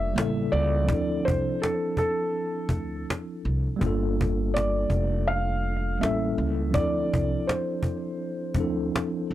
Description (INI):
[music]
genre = lo-fi hip hop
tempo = 82 BPM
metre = 4/4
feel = swing 63% on 16ths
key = D minor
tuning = A4 = 441 Hz
[part]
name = felt-muted upright piano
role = melody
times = 0.0-9.3 s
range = A4 to F5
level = -29 LUFS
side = equal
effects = low-pass filter, analog delay
[part]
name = mellow tine electric piano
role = accompaniment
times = 0.0-9.3 s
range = C#3 to A4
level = -28 LUFS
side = equal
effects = medium stereo tremolo, cassette tape, low-pass filter
[part]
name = upright bass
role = bass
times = 0.0-9.3 s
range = F1 to D2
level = -28 LUFS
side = equal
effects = tube saturation
[part]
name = cajon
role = drums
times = 0.2-9.2 s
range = none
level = -28 LUFS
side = equal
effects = none
[sound]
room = little or no reverb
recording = dry, gritty hardware recording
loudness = -24 LUFS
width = side -13 dB against mid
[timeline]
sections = 0.0-9.3 A section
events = break 0.0-9.3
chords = 0.2 A7b9; 0.9 Dm9; 3.8 Gm7; 6.0 A7b9; 6.7 Dm9